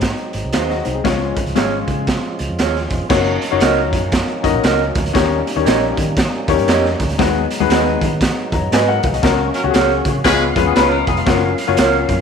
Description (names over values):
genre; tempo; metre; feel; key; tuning
uptempo 1960s-style soul; 118 BPM; 4/4; swing 62% on 8ths; F# major; A4 = 438 Hz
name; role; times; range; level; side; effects
warm upright piano; accompaniment; 0.0-12.1 s; G#3 to A#5; -19 LUFS; left 10 dB; none
tonewheel organ; sustained chords; 0.0-12.2 s; E#3 to E#5; -25 LUFS; right 1 dB; slow rotary speaker
vintage muted fingered electric bass; bass; 0.0-12.2 s; E#1 to D#3; -22 LUFS; right 1 dB; none
raw garage drum kit; drums; 0.0-12.2 s; crash cymbal, hi-hat, kick drum, snare drum; -18 LUFS; right 2 dB; none
mellow electric guitar; stabs; 0.5-12.0 s; D#4 to D#5; -22 LUFS; right 12 dB; none
warm horn section; second line; 9.5-10.5 s; F#3 to B4; -21 LUFS; left 1 dB; none
clean electric guitar; riff; 10.6-11.4 s; G#3 to B4; -20 LUFS; left 11 dB; none
room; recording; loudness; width
moderate echo chamber reverb, RT60 2.1 s; 1960s-style stereo with parts hard left and right; -14 LUFS; side -6 dB against mid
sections
0.0-3.1 A section; 3.1-12.2 B section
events
band accent 9.2-11.3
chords
0.0 G#7; 1.1 C#; 3.1 F#6; 5.1 D#7; 7.2 G#m7/D#; 9.2 F#/C#; 10.2 C#7; 11.3 F#maj7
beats
0.03 0.54 | 1.05 1.56 2.08 2.59 | 3.10 3.61 4.12 4.63 | 5.15 5.66 6.17 6.68 | 7.19 7.70 8.21 8.72 | 9.23 9.74 10.25 10.76 | 11.27 11.78